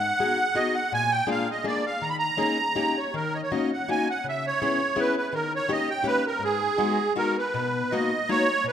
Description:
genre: musette waltz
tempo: 164 BPM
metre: 3/4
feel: rubato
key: G# minor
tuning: A4 = 439 Hz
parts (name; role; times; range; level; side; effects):
- musette accordion; melody; 0.0-8.7 s; G#4 to B5; -24 LUFS; right 2 dB; none
- fingerpicked plugged-in steel-string acoustic guitar; accompaniment; 0.0-8.7 s; G#2 to G#4; -28 LUFS; left 4 dB; none
room: wet recital hall reverb, RT60 1.5 s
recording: none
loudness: -23 LUFS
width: side -9 dB against mid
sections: 0.0-7.5 A section; 7.5-8.7 B section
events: none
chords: 0.0 G#m7; 0.9 A#7; 2.0 D#7sus4; 2.8 D#7; 3.1 D#m7; 4.2 C#m7; 5.3 D#7; 6.4 G#m7; 7.5 Bmaj7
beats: 0.20 0.56 | 0.93 1.29 1.65 | 2.02 2.39 2.76 | 3.13 3.51 3.88 | 4.24 4.61 4.97 | 5.33 5.69 6.05 | 6.42 6.78 7.16 | 7.54 7.91 8.28 | 8.64

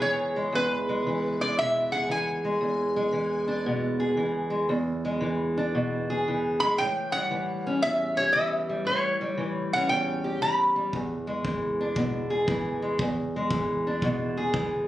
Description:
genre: acoustic country blues, solo or duo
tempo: 116 BPM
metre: 4/4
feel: swing 66% on 8ths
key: E mixolydian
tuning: A4 = 439 Hz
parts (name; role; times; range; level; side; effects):
- metal-body resonator slide guitar; melody; 0.0-11.9 s; B4 to B5; -26 LUFS; equal; none
- fingerpicked steel-string acoustic guitar; accompaniment; 0.0-14.9 s; E2 to G#4; -27 LUFS; equal; none
- kick drum; drums; 10.9-14.7 s; none; -33 LUFS; equal; none
room: moderate studio reverb, RT60 0.6 s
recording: recorded on a phone in the room, studio reverb, compression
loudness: -24 LUFS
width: side -14 dB against mid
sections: 0.0-14.9 A section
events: none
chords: 0.0 E7; 6.8 A7; 10.9 E7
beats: 0.02 | 0.54 1.06 1.58 2.10 | 2.62 3.14 3.66 4.18 | 4.70 5.22 5.74 6.26 | 6.78 7.30 7.82 8.34 | 8.86 9.38 9.89 10.41 | 10.93 11.45 11.96 12.48 | 13.00 13.52 14.03 14.55

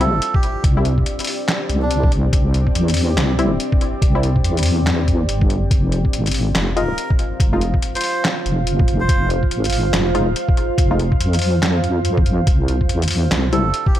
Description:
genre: deep dubstep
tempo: 142 BPM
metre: 4/4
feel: swing 61% on 16ths, half-time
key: unclear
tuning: A4 = 442 Hz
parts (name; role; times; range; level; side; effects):
- melodica; melody; 0.0-2.1, 6.8-9.3, 13.5-14.0 s; D4 to C5; -26 LUFS; right 2 dB; dub echo
- deep dark ambient pad; sustained chords; 0.0-14.0 s; C4 to F5; -24 LUFS; right 1 dB; chorus, built-in reverb
- filtered dub chord stab; stabs; 0.0-13.7 s; G3 to F4; -24 LUFS; left 3 dB; chorus, dub echo
- deep soft wobble bass; bass; 0.0-13.7 s; F1 to F2; -18 LUFS; equal; chorus, tube saturation
- trip hop sampler-style drum kit; drums; 0.0-14.0 s; handclaps, hi-hat, snare drum; -23 LUFS; equal; none
- electronic kick drum; drums; 0.3-13.9 s; none; -18 LUFS; equal; none
room: light reverb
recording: none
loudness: -15 LUFS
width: side -12 dB against mid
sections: 0.0-14.0 A section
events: none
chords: 0.0 C; 5.7 Fm7; 12.5 C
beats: 0.22 | 0.64 1.06 1.49 1.91 | 2.33 2.75 3.17 3.60 | 4.02 4.44 4.87 5.29 | 5.71 6.13 6.55 6.98 | 7.40 7.82 8.24 8.67 | 9.09 9.51 9.94 10.36 | 10.78 11.20 11.63 12.05 | 12.47 12.89 13.32 13.74

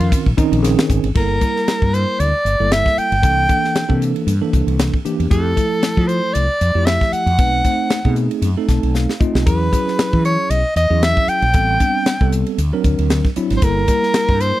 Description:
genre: electric jazz fusion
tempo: 116 BPM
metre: 4/4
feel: swing 55% on 16ths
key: G dorian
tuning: A4 = 441 Hz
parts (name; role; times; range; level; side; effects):
- bright soprano saxophone; melody; 0.0-14.6 s; F4 to G5; -18 LUFS; equal; none
- bell-like tine electric piano; accompaniment; 0.0-14.6 s; Eb3 to A5; -21 LUFS; right 1 dB; medium stereo tremolo
- mellow fretless electric bass; bass; 0.0-14.5 s; G1 to F3; -18 LUFS; equal; none
- crisp fusion drum kit; drums; 0.0-14.5 s; crash cymbal, hi-hat, kick drum, ride cymbal, snare drum; -19 LUFS; equal; none
room: little or no reverb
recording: dry, close 1970s-style studio recording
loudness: -14 LUFS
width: side -15 dB against mid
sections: 0.0-1.2 A section; 1.2-14.6 B section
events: soprano saxophone solo 0.0-1.2; tine electric piano fill 8.4-9.5; drum fill 8.9-9.5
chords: 0.0 Bbm11; 1.2 Gm69; 3.2 C13; 5.3 Fmaj9; 7.4 B7b9; 9.5 E69; 11.5 Am9; 12.6 D7b13; 13.6 Gm69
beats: 0.12 0.64 | 1.15 1.67 2.19 2.71 | 3.23 3.75 4.27 4.79 | 5.31 5.83 6.35 6.87 | 7.39 7.91 8.43 8.95 | 9.46 9.98 10.50 11.02 | 11.54 12.06 12.58 13.10 | 13.62 14.14

